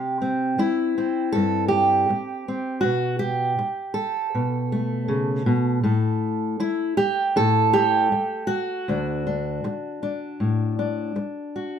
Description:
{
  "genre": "folk, solo fingerstyle acoustic guitar",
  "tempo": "79 BPM",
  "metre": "4/4",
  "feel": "straight",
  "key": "D major",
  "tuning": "A4 = 438 Hz",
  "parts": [
    { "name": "fingerpicked steel-string acoustic guitar", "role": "solo", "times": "0.0-11.8 s", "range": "D2 to A4", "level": "-21 LUFS", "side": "equal", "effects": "none" }
  ],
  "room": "wet studio ambience, RT60 0.5 s",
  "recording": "band playing live in one room",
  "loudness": "-21 LUFS",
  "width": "side -8 dB against mid",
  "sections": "0.0-11.8 A section",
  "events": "none",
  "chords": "0.0 C; 2.8 Gadd9/B; 5.8 N.C.; 8.9 D"
}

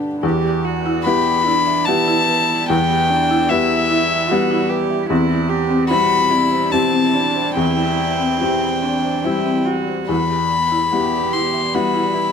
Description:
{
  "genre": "neoclassical piano and strings",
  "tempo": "73 BPM",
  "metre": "3/4",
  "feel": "rubato",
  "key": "E minor",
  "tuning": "A4 = 438 Hz",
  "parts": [
    { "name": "clear upright piano", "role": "accompaniment", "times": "0.0-12.3 s", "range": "E2 to G4", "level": "-20 LUFS", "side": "left 2 dB", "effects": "none" },
    { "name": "warm chamber string section", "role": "sustained chords", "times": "0.0-12.3 s", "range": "G3 to G4", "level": "-28 LUFS", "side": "right 2 dB", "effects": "none" },
    { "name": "rich cello", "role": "second line", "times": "0.2-12.3 s", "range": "B3 to G4", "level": "-24 LUFS", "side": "right 8 dB", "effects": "none" },
    { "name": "buzzing marimba with hard mallets", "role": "arpeggios", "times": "0.2-12.3 s", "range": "C4 to E5", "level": "-24 LUFS", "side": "equal", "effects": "slapback echo" },
    { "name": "rich violin", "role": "melody", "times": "1.0-12.3 s", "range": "E5 to C6", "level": "-18 LUFS", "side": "left 4 dB", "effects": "none" }
  ],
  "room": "little or no reverb",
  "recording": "close, detailed microphones",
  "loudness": "-15 LUFS",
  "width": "side -7 dB against mid",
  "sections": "0.2-12.3 A section",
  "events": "none",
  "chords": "0.2 Em; 5.1 C/E; 10.1 Em"
}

